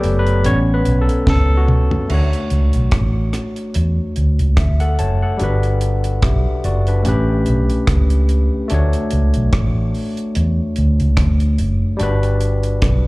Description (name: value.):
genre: lovers rock reggae.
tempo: 73 BPM.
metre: 4/4.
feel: swing 56% on 16ths.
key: D major.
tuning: A4 = 440 Hz.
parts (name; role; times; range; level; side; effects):
barky tine electric piano; accompaniment; 0.0-13.1 s; F#3 to A5; -21 LUFS; left 1 dB; overdrive.
vintage muted fingered electric bass; bass; 0.0-13.0 s; F#1 to E2; -15 LUFS; equal; none.
deep reggae drum kit; drums; 0.0-13.0 s; crash cymbal, hi-hat, kick drum, rim click, snare drum, toms; -20 LUFS; equal; none.
room: studio reverb.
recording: live gig heard through the venue's PA, club reverb.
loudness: -14 LUFS.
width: side -22 dB against mid.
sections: 0.0-2.1 A section; 2.1-13.1 B section.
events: tine electric piano solo 0.0-2.1; drum fill 1.3-2.1.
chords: 0.5 A9; 2.1 Dmaj7; 5.4 Gmaj7; 7.1 A9; 8.7 Dmaj7; 12.0 Gmaj7.